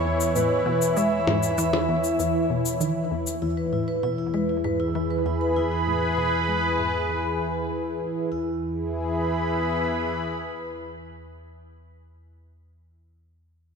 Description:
ambient, sequencer-driven space music; 98 BPM; 4/4; straight; E major; A4 = 442 Hz
breathy flute-like synth lead; melody; 0.0-2.8 s; B4 to E5; -27 LUFS; left 1 dB; chorus, analog delay
sweeping resonant pad; sustained chords; 0.0-11.5 s; E3 to B5; -26 LUFS; right 1 dB; chorus
resonant blip pluck; riff; 0.0-8.6 s; E2 to G#3; -30 LUFS; left 1 dB; chorus, analog delay
analog drone; bass; 0.0-10.1 s; E2; -33 LUFS; equal; chorus
cabasa and percussion blips; percussion; 0.2-3.4 s; -29 LUFS; left 3 dB
vibraphone with medium mallets; arpeggios; 3.4-8.6 s; E4 to B4; -30 LUFS; moving between left 11 dB and equal; auto-pan, analog delay
wet lush hall reverb, RT60 3.0 s; -22 LUFS; side -5 dB against mid
0.0-3.4 A section; 3.4-8.3 B section; 8.3-10.8 C section
filter sweep on synth arpeggio sound 0.0-3.4; fade-out on synth arpeggio sound 3.4-8.3
0.0 E

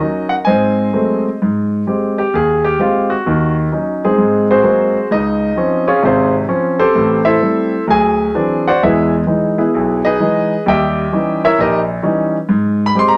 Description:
solo jazz; 130 BPM; 4/4; swing 67% on 8ths, rubato; A4 = 440 Hz
warm concert grand piano; solo; 0.0-13.2 s; Ab1 to C6; -15 LUFS; equal
wet small room reverb, RT60 0.5 s; -15 LUFS; mono
0.0-1.4 A section; 1.4-13.2 B section
grand piano solo 1.4-13.2
0.5 Ab7b9; 1.4 Abmaj7; 3.3 Ebm7; 4.2 Ab9; 5.1 Dbmaj7; 6.9 Am7; 7.9 D9; 8.8 Emaj7; 10.7 Eb7b9; 12.5 Abmaj7

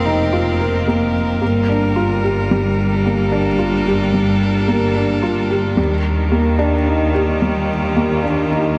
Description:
piano and strings electronica; 110 BPM; 4/4; straight; A4 = 440 Hz
bright string quartet; sustained chords; 0.0-8.8 s; Eb3 to Bb4; -24 LUFS; equal
felt-muted upright piano; riff; 0.0-8.8 s; G3 to Bb4; -20 LUFS; equal; digital delay
clear studio double bass section; bass; 0.0-8.8 s; F1 to Eb2; -22 LUFS; equal
wet echo chamber reverb, RT60 2.5 s; dark, warm production; -17 LUFS; mono
0.0-8.8 A section
0.0 F7sus4; 1.4 Gm7; 5.8 Ebmaj7

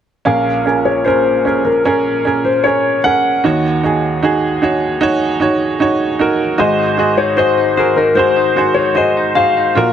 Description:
pop; 76 BPM; 4/4; straight; Bb minor; A4 = 440 Hz
bright upright piano; accompaniment; 0.2-9.9 s; Ab1 to Eb5; -14 LUFS; right 3 dB
warm concert grand piano; melody; 0.3-9.9 s; Bb4 to Gb5; -14 LUFS; left 4 dB
direct-recorded clean electric guitar; arpeggios; 6.6-9.9 s; Bb2 to C5; -20 LUFS; left 8 dB
light reverb, small room ambience; -12 LUFS; side -9 dB against mid
0.3-9.9 A section
0.3 Bbm7; 3.4 Ebm7; 6.6 Ab7

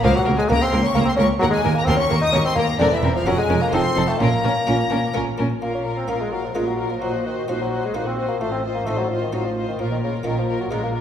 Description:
classical, baroque-style concerto movement with solo episodes; 130 BPM; 3/4; straight; Bb minor; A4 = 442 Hz
mellow bassoon; melody; 0.0-10.9 s; Db3 to Eb4; -23 LUFS; left 1 dB
rich chamber violin section; melody; 0.0-11.0 s; Db5 to Eb6; -28 LUFS; left 4 dB
rich chamber violin section; second line; 0.0-11.0 s; A4 to C5; -28 LUFS; left 4 dB
rich studio viola section; accompaniment; 0.0-11.0 s; Bb3 to Gb4; -28 LUFS; equal
dark chamber double bass section; bass; 0.0-11.0 s; E1 to Eb2; -27 LUFS; right 2 dB
rich symphonic cello section; bass; 0.0-11.0 s; Db2 to Bb2; -26 LUFS; right 1 dB
buff-stop harpsichord; accompaniment; 0.1-11.0 s; Db2 to Bb4; -30 LUFS; right 2 dB
wet recital hall reverb, RT60 1.4 s; heard from further back in the room; -18 LUFS; side -9 dB against mid
0.0-5.6 A section; 5.6-11.0 B section
0.0 Bbm/Db; 1.4 Ebm; 2.8 C7/E; 3.3 Bbm/F; 3.7 F7; 4.2 Bbm; 7.0 Cm7b5/Bb; 8.4 F7/A; 9.8 Bbm

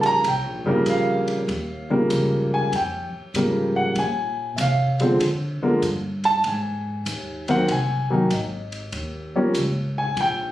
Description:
jazz piano trio; 97 BPM; 4/4; swing 66% on 8ths; Eb mixolydian; A4 = 440 Hz
warm grand piano; melody; 0.0-10.5 s; Db3 to Bb5; -21 LUFS; equal
upright bass; bass; 0.0-10.5 s; G1 to D3; -27 LUFS; equal
compact cocktail drum kit; drums; 0.0-10.4 s; hi-hat, kick drum, ride cymbal; -34 LUFS; equal
light reverb; recorded on a phone in the room, studio reverb; -20 LUFS; side -14 dB against mid
0.0-10.5 A section
0.0 Eb9; 4.0 Bb9; 6.4 Ab7; 8.9 Eb7

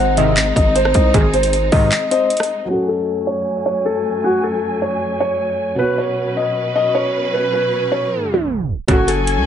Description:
hip hop, trap; 155 BPM; 4/4; half-time; A4 = 440 Hz
felt-muted upright piano; melody; 0.0-9.4 s; F#4 to D#5; -18 LUFS; left 1 dB; low-pass filter, tape echo
soft octave-layered synth lead; second line; 0.0-2.3, 9.1-9.4 s; B#4 to G#5; -23 LUFS; left 8 dB; chorus, tape echo
dark concert grand piano; accompaniment; 0.0-9.5 s; B2 to D#5; -28 LUFS; right 1 dB; low-pass filter
warm studio string section; sustained chords; 0.0-9.5 s; F#2 to G#5; -23 LUFS; equal; low-pass filter
distorted 808-style bass; bass; 0.0-1.9, 8.9-9.5 s; F#1 to G#2; -19 LUFS; equal; distortion
chorused polysynth; stabs; 0.2-1.9, 8.9-9.0 s; C#2 to D#3; -20 LUFS; right 3 dB
trap drum kit; drums; 0.2-2.5, 8.9-9.4 s; handclaps, hi-hat, kick drum, rim click; -17 LUFS; equal
light reverb, small room ambience; tape stop, nothing above 10.7 kHz; -15 LUFS; side -9 dB against mid
0.0-2.7 A section; 2.7-8.9 B section
break 1.9-2.7; filter sweep 2.7-8.9; tape stop 8.1-8.9
0.0 G#; 2.7 F#madd9; 5.8 Bsus2; 8.9 F#madd9

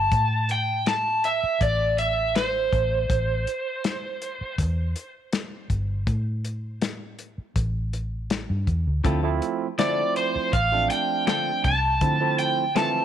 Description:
straight-eighth soul blues; 81 BPM; 4/4; straight; A minor; A4 = 440 Hz
overdriven slide guitar; melody; 0.0-4.6, 9.8-13.0 s; C5 to A5; -23 LUFS; right 1 dB
vintage muted fingered electric bass; bass; 0.0-13.0 s; G1 to D3; -26 LUFS; equal
warm soul drum kit; drums; 0.1-12.9 s; hi-hat, kick drum, snare drum; -28 LUFS; left 3 dB
barky tine electric piano; accompaniment; 9.0-13.0 s; E3 to E4; -28 LUFS; right 10 dB
direct-recorded clean electric guitar; stabs; 9.0-13.0 s; D3 to A4; -32 LUFS; left 8 dB
light reverb; 1960s-style stereo with parts hard left and right; -22 LUFS; side -10 dB against mid
0.0-13.0 A section
0.0 Am; 9.0 Dm7

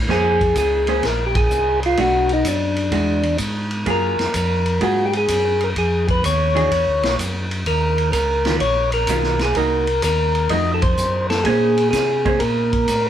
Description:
soul jazz organ trio; 127 BPM; 4/4; swing 68% on 8ths; Bb minor; A4 = 440 Hz
mellow tonewheel organ; bass; 0.0-13.1 s; Bb1 to C3; -22 LUFS; equal; overdrive, chorus vibrato, slow rotary speaker
percussive tonewheel organ; melody; 0.1-13.1 s; D4 to Eb5; -19 LUFS; left 1 dB; slow rotary speaker
vintage hollow-body jazz guitar; accompaniment; 0.1-12.4 s; Eb3 to C5; -24 LUFS; right 4 dB
vintage drum kit; drums; 0.1-13.0 s; hi-hat, kick drum, ride cymbal, snare drum; -24 LUFS; equal
light reverb; band playing live in one room; -16 LUFS; side -10 dB against mid
0.1-13.1 A section
band accent 1.3, 10.7
0.1 Bbm9; 2.0 Bm7; 2.9 E9; 3.9 Gbmaj9; 5.8 Ebm11; 6.7 Esus2; 7.7 Ebm9; 9.6 Cm7b5; 10.5 F7b9; 11.5 Bbm9

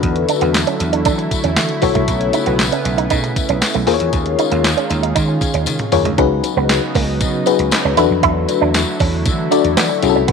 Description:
early-eighties boogie funk; 117 BPM; 4/4; straight; A4 = 439 Hz
FM electric piano with tremolo; accompaniment; 0.0-10.3 s; Db4 to D5; -17 LUFS; left 14 dB
lush unison pad; sustained chords; 0.0-10.3 s; Db3 to F4; -22 LUFS; right 1 dB; chorus
vintage slap bass; bass; 0.0-10.3 s; Cb2 to E3; -20 LUFS; right 1 dB
crisp 8-bit digital drum machine; drums; 0.0-10.3 s; handclaps, hi-hat, kick drum, snare drum, toms; -20 LUFS; right 1 dB
electric guitar with an envelope filter; riff; 0.2-10.3 s; Ab3 to E4; -20 LUFS; right 14 dB; wide subtle chorus
tambourine; percussion; 0.3-10.2 s; -27 LUFS; left 11 dB
light reverb; 1960s-style stereo with parts hard left and right; -14 LUFS; side -5 dB against mid
0.0-6.2 A section; 6.2-10.3 B section
drum fill 5.7-6.2
0.0 E9sus4; 1.8 Cb9sus4; 3.9 Eb9sus4; 6.2 Db9sus4; 8.0 E9sus4

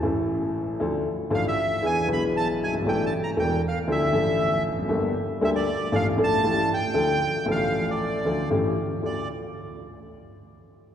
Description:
tango; 117 BPM; 4/4; rubato; D minor; A4 = 442 Hz
dark grand piano; accompaniment; 0.0-9.2 s; E1 to A4; -24 LUFS; left 1 dB
bandoneon; melody; 1.3-9.3 s; D5 to B5; -28 LUFS; right 2 dB
wet church reverb, RT60 3.9 s; recorded in a church or concert hall; -22 LUFS; side -9 dB against mid
0.0-9.0 A section; 9.0-10.9 B section
0.0 A; 0.8 Dmadd9; 1.8 E7; 2.9 Asus4; 3.9 Dmadd9; 4.9 Gmadd9; 5.9 Dm/A; 6.5 A7; 7.0 Dm; 8.5 A7; 9.0 Dm

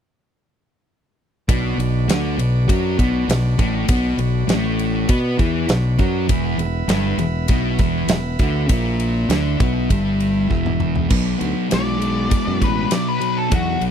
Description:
blues rock power trio and southern rock; 100 BPM; 4/4; straight; B minor; A4 = 440 Hz
bright tonewheel organ; sustained chords; 1.5-13.9 s; B3 to E5; -32 LUFS; right 7 dB; overdrive, stopped rotary speaker
thick fuzz guitar; riff; 1.5-13.9 s; E2 to B4; -20 LUFS; left 1 dB; distortion
modern bright fingered electric bass; bass; 1.5-13.9 s; E1 to B2; -23 LUFS; equal
big rock drum kit; drums; 1.5-13.9 s; crash cymbal, kick drum, ride cymbal, snare drum, toms; -21 LUFS; equal
octave-fuzz lead guitar; melody; 11.7-13.8 s; F#4 to D5; -23 LUFS; left 4 dB; distortion
little or no reverb; dry, close 1970s-style studio recording; -16 LUFS; side -8 dB against mid
1.5-11.1 A section; 11.1-13.9 B section
drum fill 10.5-11.1; lead electric guitar solo 11.1-13.9
1.5 Bm; 6.3 E5; 11.1 Bm

